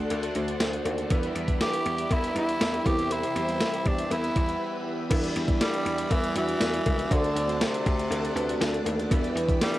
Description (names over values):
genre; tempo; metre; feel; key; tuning
1980s-style pop; 120 BPM; 4/4; straight; E minor; A4 = 440 Hz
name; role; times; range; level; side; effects
glassy digital keys; accompaniment; 0.0-9.8 s; D3 to D5; -31 LUFS; right 1 dB; chorus, cassette tape, plate reverb
raw garage guitar; accompaniment; 0.0-9.8 s; E2 to E4; -36 LUFS; equal; overdrive, wide subtle chorus, cassette tape, plate reverb
phased string machine; sustained chords; 0.0-9.8 s; G3 to C6; -35 LUFS; equal; ensemble chorus, phaser, cassette tape, plate reverb
dry thumbed slap bass; bass; 0.0-9.6 s; C#2 to E2; -33 LUFS; equal; none
clean 12-bit digital drum machine; drums; 0.1-9.8 s; crash cymbal, hi-hat, kick drum, snare drum, tambourine; -28 LUFS; equal; none
cowbell; percussion; 0.1-9.7 s; none; -36 LUFS; left 5 dB; none
raspy tenor saxophone; melody; 1.6-9.8 s; C3 to G4; -30 LUFS; equal; cassette tape, tape echo
room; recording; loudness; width
moderate booth ambience, RT60 0.2 s; home recording on cassette; -24 LUFS; side -15 dB against mid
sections
0.0-5.1 A section; 5.1-9.8 A section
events
break 4.6-5.1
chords
0.0 D7; 1.1 Em7; 2.9 C/E; 4.1 Em; 5.1 Em7; 7.1 D7; 9.1 Em7